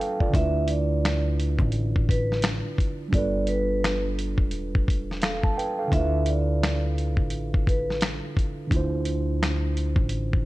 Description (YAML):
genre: lo-fi hip hop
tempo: 86 BPM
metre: 4/4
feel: swing 61% on 16ths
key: D dorian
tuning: A4 = 437 Hz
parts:
  - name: mellow tine electric piano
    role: accompaniment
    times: 0.0-10.5 s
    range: D3 to A5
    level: -28 LUFS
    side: right 2 dB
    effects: cassette tape
  - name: dusty soul sampler-style drum kit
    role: drums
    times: 0.0-10.5 s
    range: finger snaps, hi-hat, kick drum, snare drum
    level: -25 LUFS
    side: equal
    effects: vintage 12-bit sampler grit
  - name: vibraphone with soft mallets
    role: melody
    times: 0.3-8.0 s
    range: B4 to E5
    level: -30 LUFS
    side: right 1 dB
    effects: tape echo
  - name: upright bass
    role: bass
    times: 0.3-10.5 s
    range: E1 to D2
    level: -27 LUFS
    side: equal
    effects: none
room: studio reverb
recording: none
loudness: -22 LUFS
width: side -18 dB against mid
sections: 0.0-10.5 A section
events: none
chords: 0.3 Dm69; 3.1 G9; 5.9 Dm69; 8.7 Dm9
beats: | 0.34 1.03 1.73 2.43 | 3.13 3.83 4.52 5.22 | 5.92 6.62 7.31 8.01 | 8.71 9.41 10.11